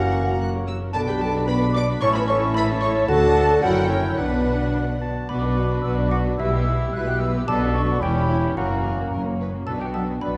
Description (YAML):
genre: cinematic, playful, whimsical film cue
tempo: 110 BPM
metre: 2/4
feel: straight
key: B minor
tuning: A4 = 439 Hz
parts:
  - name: rich studio violin section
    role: melody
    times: 0.0-10.3 s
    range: E4 to F#6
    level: -39 LUFS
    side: equal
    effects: none
  - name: xylophone with rubber mallets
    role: melody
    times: 0.0-10.4 s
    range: B4 to D6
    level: -35 LUFS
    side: equal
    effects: none
  - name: dark clarinet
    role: second line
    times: 0.0-10.0 s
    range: C#4 to G4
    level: -34 LUFS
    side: equal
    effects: none
  - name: dark studio violin section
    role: second line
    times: 0.0-10.3 s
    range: A#3 to D6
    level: -35 LUFS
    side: equal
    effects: none
  - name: flute section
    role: second line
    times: 0.0-10.4 s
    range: B4 to F#6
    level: -33 LUFS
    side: equal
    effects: none
  - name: warm oboe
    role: second line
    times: 0.0-10.4 s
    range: E4 to B5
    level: -36 LUFS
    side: equal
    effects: none
  - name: clear studio viola section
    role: accompaniment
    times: 0.0-10.4 s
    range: F#3 to C#5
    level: -34 LUFS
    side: equal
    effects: none
  - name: mellow bassoon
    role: accompaniment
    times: 0.0-10.0 s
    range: A#3 to F#4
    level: -32 LUFS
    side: equal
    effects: none
  - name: mellow French horn section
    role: sustained chords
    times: 0.0-10.4 s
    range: A#3 to D5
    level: -27 LUFS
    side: equal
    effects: none
  - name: concert harp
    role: arpeggios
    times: 0.0-10.4 s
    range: E2 to E5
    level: -32 LUFS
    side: equal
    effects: none
  - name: rich studio cello section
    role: bass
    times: 0.0-10.4 s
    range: D2 to B2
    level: -30 LUFS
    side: equal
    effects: none
  - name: rich studio double bass section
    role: bass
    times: 0.0-10.4 s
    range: E1 to D2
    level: -29 LUFS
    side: equal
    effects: none
room: wet concert hall reverb, RT60 2.0 s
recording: dark, warm production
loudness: -22 LUFS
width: mono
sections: 0.0-5.3 A section; 5.3-10.4 A section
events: none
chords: 0.0 F#; 0.9 Bm; 2.0 A; 3.1 D; 3.6 F#7b9; 4.2 Bm; 6.4 Em/B; 7.5 Bm; 8.0 C#dim/E; 8.6 F#; 9.7 Bm